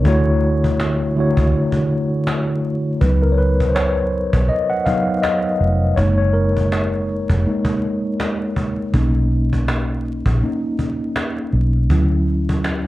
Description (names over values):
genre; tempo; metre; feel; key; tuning
lo-fi hip hop; 81 BPM; 4/4; swing 57% on 16ths; unclear; A4 = 440 Hz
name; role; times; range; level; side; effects
mellow tine electric piano; accompaniment; 0.0-12.9 s; D3 to F#5; -19 LUFS; equal; medium stereo tremolo
vintage muted fingered electric bass; bass; 0.0-12.9 s; E#1 to D2; -18 LUFS; equal; none
cajon; drums; 0.1-12.8 s; none; -24 LUFS; equal; none
room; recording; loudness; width
light reverb; dark, warm production, vinyl crackle; -16 LUFS; side -16 dB against mid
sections
0.0-3.0 A section; 3.0-12.9 B section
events
tine electric piano solo 3.0-12.9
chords
0.0 Dmaj7; 3.0 C#9sus4; 6.0 F#69; 8.9 Bmaj9; 11.9 Dmaj7